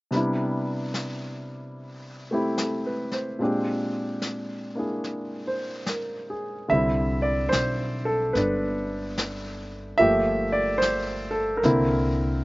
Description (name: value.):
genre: jazz ballad.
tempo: 73 BPM.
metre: 4/4.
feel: swing 66% on 8ths.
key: C major.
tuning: A4 = 439 Hz.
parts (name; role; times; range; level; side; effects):
warm baby grand piano; accompaniment; 0.1-12.4 s; Bb2 to E5; -24 LUFS; equal; slapback echo.
vintage brush drum kit; drums; 0.1-12.4 s; brushed snare drum, hi-hat, snare drum; -34 LUFS; left 1 dB; none.
upright bass; bass; 6.7-12.4 s; G1 to C2; -30 LUFS; equal; none.
room: little or no reverb.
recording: recorded outdoors, with no room sound, nothing above 7.6 kHz.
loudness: -23 LUFS.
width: side -20 dB against mid.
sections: 0.1-6.7 A section; 6.7-12.4 B section.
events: none.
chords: 0.1 Cmaj9; 3.4 Bb13; 6.7 Cmaj9; 10.0 Gm9; 11.6 C9.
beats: | 0.11 0.94 1.76 2.58 | 3.40 4.22 5.04 5.87 | 6.69 7.52 8.34 9.16 | 9.98 10.80 11.62.